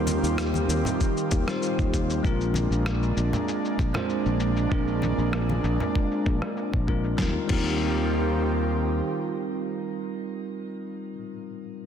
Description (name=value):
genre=sunset chillout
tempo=97 BPM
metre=4/4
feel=straight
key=Eb major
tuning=A4 = 441 Hz
part: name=bell-like tine electric piano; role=accompaniment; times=0.0-11.9 s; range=G3 to C5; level=-30 LUFS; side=moving between left 8 dB and right 8 dB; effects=auto-pan, low-pass filter, digital delay, shimmer reverb
part: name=airy breathy pad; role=sustained chords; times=0.0-10.4 s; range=Eb3 to G4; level=-30 LUFS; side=right 1 dB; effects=chorus, shimmer reverb
part: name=sustaining fretless electric bass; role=bass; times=0.0-9.0 s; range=Bb1 to Eb2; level=-26 LUFS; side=equal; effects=none
part: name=dusty soul sampler-style drum kit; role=drums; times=0.1-7.7 s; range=cabasa, crash cymbal, rim click, snare drum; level=-34 LUFS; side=left 2 dB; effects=overdrive, low-pass filter on perc, soft clipping on snare, low-pass filter on snare, low-pass filter on toms, low-pass filter on cymbals
part: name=congas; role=percussion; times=0.1-5.9 s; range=none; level=-33 LUFS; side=left 1 dB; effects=none
part: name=electronic kick drum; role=drums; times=1.0-7.7 s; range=none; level=-26 LUFS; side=equal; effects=overdrive
room=moderate recital hall reverb, RT60 1.4 s, digital ambience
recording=dense, heavily limited modern master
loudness=-23 LUFS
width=side -8 dB against mid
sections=0.0-7.2 A section; 7.2-9.7 B section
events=filter sweep on drum 0.0-7.2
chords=0.0 Eb69; 2.2 Bb7; 7.2 Eb69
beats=0.38 1.00 1.62 | 2.23 2.85 3.47 4.09 | 4.71 5.33 5.95 6.57 | 7.18 7.80 8.42 9.04